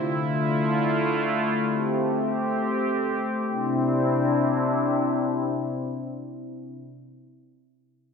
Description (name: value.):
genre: pop.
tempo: free time.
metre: none.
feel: none.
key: C major.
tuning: A4 = 439 Hz.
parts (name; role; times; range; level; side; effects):
sweeping resonant pad; sustained chords; 0.0-6.7 s; C3 to G4; -23 LUFS; left 1 dB; chorus, low-pass filter.
room: wet lush hall reverb, RT60 1.8 s.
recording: bright 1980s-style digital production.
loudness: -22 LUFS.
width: side -6 dB against mid.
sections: 0.0-3.5 A section; 3.5-7.1 B section.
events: none.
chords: 0.0 Dmadd9; 1.7 Am7; 3.5 Cadd9.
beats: free time.